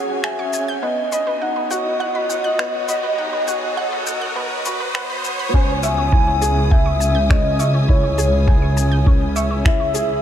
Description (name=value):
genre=piano and strings electronica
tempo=102 BPM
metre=4/4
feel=straight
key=C# minor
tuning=A4 = 440 Hz
part: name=warm velvety synth lead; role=melody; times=0.0-10.2 s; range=C#5 to G#5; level=-22 LUFS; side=left 1 dB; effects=chorus, tape echo
part: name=rich studio string section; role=sustained chords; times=0.0-10.2 s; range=F#3 to D#6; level=-30 LUFS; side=left 1 dB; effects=sidechain pumping
part: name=analog pluck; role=arpeggios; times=0.0-10.0 s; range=B4 to G6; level=-31 LUFS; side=right 2 dB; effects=chorus, sidechain pumping, tape echo
part: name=felt-muted upright piano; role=riff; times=0.0-10.2 s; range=B3 to B5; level=-25 LUFS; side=equal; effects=tape echo
part: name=riser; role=sound effects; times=0.1-5.5 s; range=none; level=-29 LUFS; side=right 2 dB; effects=none
part: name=electronic finger snaps and shaker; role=drums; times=0.2-10.1 s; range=none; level=-27 LUFS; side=left 2 dB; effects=overdrive
part: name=dark chamber double bass section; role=bass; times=5.5-10.2 s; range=C#2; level=-19 LUFS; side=equal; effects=sidechain pumping
part: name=electronic kick drum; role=drums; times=5.5-9.8 s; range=none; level=-15 LUFS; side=equal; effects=none
room=moderate huge ambient reverb, RT60 4.8 s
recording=high-pass filter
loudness=-16 LUFS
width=side -10 dB against mid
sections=0.0-5.5 A section; 5.5-10.2 B section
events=build-up 0.0-5.5; filter sweep on string section 0.0-5.5; filter sweep on soft synth lead 0.0-5.5; filter sweep 0.0-5.5; riser 0.1-5.5; drop 5.5-10.2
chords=0.0 F#sus2; 0.8 B; 5.5 C#m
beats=0.24 | 0.83 1.42 2.00 2.59 | 3.18 3.77 4.36 4.95 | 5.54 6.12 6.71 7.30 | 7.89 8.48 9.06 9.65